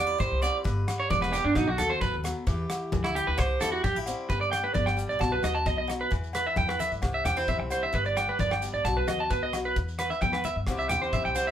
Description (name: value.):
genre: highlife guitar band.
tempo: 132 BPM.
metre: 4/4.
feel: straight.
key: G major.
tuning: A4 = 440 Hz.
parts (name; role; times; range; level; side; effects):
picked swing-style acoustic guitar; accompaniment; 0.0-11.5 s; G2 to B4; -36 LUFS; left 4 dB; none.
electric guitar at the edge of break-up; arpeggios; 0.0-11.5 s; D4 to A5; -27 LUFS; right 2 dB; none.
upright bass; bass; 0.0-11.5 s; E1 to G2; -33 LUFS; equal; none.
damped 70s drum kit; drums; 0.2-11.5 s; hi-hat, kick drum, rim click; -33 LUFS; equal; none.
congas; percussion; 0.2-11.4 s; none; -36 LUFS; left 3 dB; none.
shekere; percussion; 0.2-11.5 s; none; -39 LUFS; right 1 dB; none.
agogo bells; percussion; 0.4-11.5 s; none; -38 LUFS; left 1 dB; none.
room: moderate studio reverb, RT60 0.5 s.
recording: band playing live in one room.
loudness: -25 LUFS.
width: side -10 dB against mid.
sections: 0.0-4.3 A section; 4.3-11.5 B section.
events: clean electric guitar solo 0.0-4.3.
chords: 0.0 C; 0.7 G; 1.6 B7; 2.5 Em; 3.4 C; 4.3 G; 5.2 B7; 6.1 Em; 7.0 C; 7.9 G; 8.9 B7; 9.8 Em; 10.7 C.